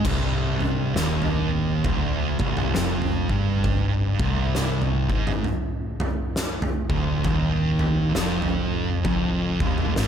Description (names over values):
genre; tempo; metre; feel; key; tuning
stoner and doom metal; 67 BPM; 4/4; swing 61% on 8ths; C minor; A4 = 442 Hz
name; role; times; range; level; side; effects
thick fuzz guitar; riff; 0.0-10.1 s; C2 to Ab2; -26 LUFS; left 7 dB; distortion
thick fuzz guitar; riff; 0.0-10.1 s; C2 to Ab2; -26 LUFS; right 8 dB; distortion
hollow-body short-scale picked electric bass; bass; 0.0-10.1 s; C1 to Ab1; -29 LUFS; equal; overdrive
oversized low-tuned drum kit; drums; 0.0-10.1 s; crash cymbal, kick drum, snare drum, toms; -26 LUFS; equal; none
room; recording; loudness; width
light reverb; none; -21 LUFS; side -8 dB against mid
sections
0.1-10.1 A section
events
none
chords
0.1 Cm; 7.3 Eb5